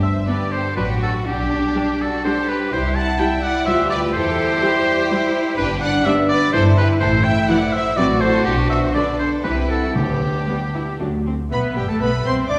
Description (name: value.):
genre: quick classical-period movement for symphony orchestra.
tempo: 124 BPM.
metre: 3/4.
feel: rubato.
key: G major.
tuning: A4 = 440 Hz.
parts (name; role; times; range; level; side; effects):
warm studio violin section; melody; 0.0-12.6 s; G4 to D6; -30 LUFS; equal; none.
clear oboe; second line; 0.0-12.6 s; G4 to A5; -25 LUFS; equal; none.
clear studio violin section; second line; 0.0-12.6 s; D4 to F#5; -31 LUFS; equal; none.
mellow French horn section; sustained chords; 0.0-12.6 s; F#3 to G4; -26 LUFS; equal; none.
warm studio double bass section; bass; 0.0-12.6 s; G1 to E2; -25 LUFS; equal; none.
rich studio viola section; accompaniment; 0.3-12.6 s; D3 to F4; -29 LUFS; equal; none.
clear studio cello section; bass; 0.3-12.6 s; G3 to A4; -29 LUFS; equal; none.
timpani; percussion; 10.0-10.7 s; D3; -27 LUFS; equal; none.
mellow hollow large flute ensemble; second line; 11.5-12.6 s; G4 to D5; -31 LUFS; equal; none.
warm clarinet; second line; 11.5-12.6 s; D5 to E5; -32 LUFS; equal; none.
warm trumpet; stabs; 11.5-12.6 s; G4 to D5; -29 LUFS; equal; none.
room: wet recital hall reverb, RT60 1.6 s.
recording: heard from further back in the room.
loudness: -19 LUFS.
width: mono.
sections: 0.0-11.5 A section; 11.5-12.6 B section.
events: none.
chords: 0.0 G; 0.8 D/A; 1.3 G/B; 2.7 C; 3.7 G7/D; 4.1 C/E; 5.6 G; 6.5 Em/G; 7.0 A5; 8.0 F#dim/A; 8.5 Cmaj7sus2/B; 9.4 Am/C; 10.0 G/D; 11.0 D; 11.5 G.